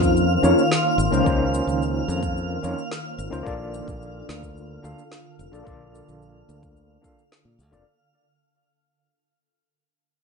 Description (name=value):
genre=sunset chillout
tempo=109 BPM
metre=4/4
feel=straight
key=unclear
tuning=A4 = 441 Hz
part: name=overdriven tine electric piano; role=accompaniment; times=0.0-7.8 s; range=Bb3 to F5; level=-26 LUFS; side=moving between left 5 dB and right 3 dB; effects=fast tremolo, auto-pan, low-pass filter, digital delay
part: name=shimmering ambient pad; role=sustained chords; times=0.0-7.8 s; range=D3 to C5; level=-25 LUFS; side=left 1 dB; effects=chorus, built-in reverb, phaser, vintage 12-bit sampler grit
part: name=modern bright fingered electric bass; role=bass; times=0.0-7.8 s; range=F1 to Bb2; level=-26 LUFS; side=equal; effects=none
part: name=electronic cabasa and snare drum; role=drums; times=0.0-7.8 s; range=none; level=-31 LUFS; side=equal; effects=none
part: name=electronic kick drum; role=drums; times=0.0-7.2 s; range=none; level=-29 LUFS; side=equal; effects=none
part: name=twinkling granular texture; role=texture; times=0.0-7.9 s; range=F5 to F6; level=-28 LUFS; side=right 1 dB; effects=built-in reverb
room=wet studio reverb, RT60 0.6 s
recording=rough home demo mix, nothing above 10.3 kHz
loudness=-20 LUFS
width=side -4 dB against mid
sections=0.0-7.9 A section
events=fade-out 0.0-7.9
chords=0.0 Dbmaj13; 3.5 Bbmaj7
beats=0.16 0.71 | 1.26 1.81 2.36 2.91 | 3.46 4.01 4.56 5.11 | 5.66 6.21 6.76 7.31